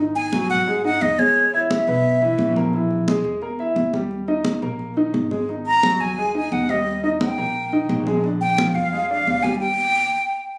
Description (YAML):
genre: latin, salsa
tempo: 174 BPM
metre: 4/4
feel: straight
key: G# minor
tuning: A4 = 440 Hz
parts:
  - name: warm concert grand piano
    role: accompaniment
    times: 0.0-9.6 s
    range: D3 to E5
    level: -26 LUFS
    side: equal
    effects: none
  - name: upright bass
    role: bass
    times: 0.0-10.1 s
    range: G#1 to G#2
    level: -30 LUFS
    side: equal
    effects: none
  - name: breathy bright concert flute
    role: melody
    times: 0.2-2.5, 5.7-10.6 s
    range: C#5 to A#5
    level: -22 LUFS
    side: equal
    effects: none
  - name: congas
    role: percussion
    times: 0.2-9.6 s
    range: none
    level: -29 LUFS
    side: equal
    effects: none
room: moderate large studio reverb, RT60 0.9 s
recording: recorded on a phone in the room, studio ambience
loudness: -21 LUFS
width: mono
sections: 0.0-10.6 A section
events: none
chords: 0.0 G#5; 1.4 E; 2.7 Emaj7#11; 4.1 D#; 5.5 G#5; 6.9 D#; 8.2 A#7; 9.6 D#